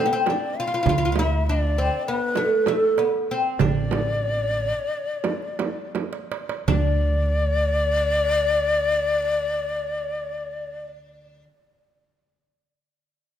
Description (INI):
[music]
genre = Turkish makam ensemble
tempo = 160-200 BPM (eighths)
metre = 9/8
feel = straight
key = D makam huseyni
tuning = A4 = 440 Hz
[part]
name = oud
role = melody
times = 0.0-11.4 s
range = A3 to F4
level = -23 LUFS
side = equal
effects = none
[part]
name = breathy bright low ney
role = second line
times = 0.0-10.8 s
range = A4 to F5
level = -24 LUFS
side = left 3 dB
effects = none
[part]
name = darbuka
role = percussion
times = 0.3-7.0 s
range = none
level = -27 LUFS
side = right 7 dB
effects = none
[part]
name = frame drum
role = percussion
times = 0.3-7.0 s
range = none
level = -30 LUFS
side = right 6 dB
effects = none
[part]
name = upright bass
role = bass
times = 0.9-11.4 s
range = A1 to D2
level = -25 LUFS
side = right 1 dB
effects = none
[sound]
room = light reverb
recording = none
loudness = -20 LUFS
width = side -10 dB against mid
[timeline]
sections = 0.0-6.7 A section; 6.7-10.1 B section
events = slowing down 1.5-6.7; drum fill 5.9-6.7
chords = none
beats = 0.27 0.56 | 0.86 1.16 1.46 1.76 2.06 2.37 2.67 2.98 3.29 | 3.60 3.92 4.25 4.57 4.91 5.25 5.59 5.95 6.31 | 6.68 7.05 7.43 7.80 8.18 8.55 8.93 9.30 9.68